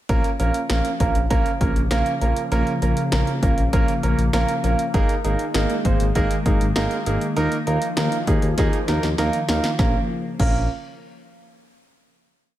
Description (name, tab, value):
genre	synth-pop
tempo	99 BPM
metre	4/4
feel	straight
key	Bb minor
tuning	A4 = 435 Hz
part	clear concert grand piano	accompaniment	0.1-10.7 s	Bb3 to C5	-24 LUFS	right 3 dB	none
part	phased analog pad	sustained chords	0.6-10.1 s	Db3 to Bb3	-28 LUFS	left 2 dB	phaser, chorus
part	smooth synth bass	bass	0.1-10.7 s	Ab1 to Eb2	-23 LUFS	equal	none
part	punchy analog drum machine	drums	0.1-10.5 s	crash cymbal, hi-hat, kick drum, snare drum	-23 LUFS	equal	gated reverb
room	light reverb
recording	none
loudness	-18 LUFS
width	side -13 dB against mid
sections	0.1-9.8 verse; 9.8-12.2 final chord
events	drum fill 8.6-9.8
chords	0.1 Bbm; 4.9 Absus2; 7.4 Ebsus2; 9.8 Bbm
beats	| 0.09 0.70 1.30 1.91 | 2.52 3.12 3.73 4.33 | 4.94 5.55 6.15 6.76 | 7.37 7.97 8.58 9.18 | 9.79 10.40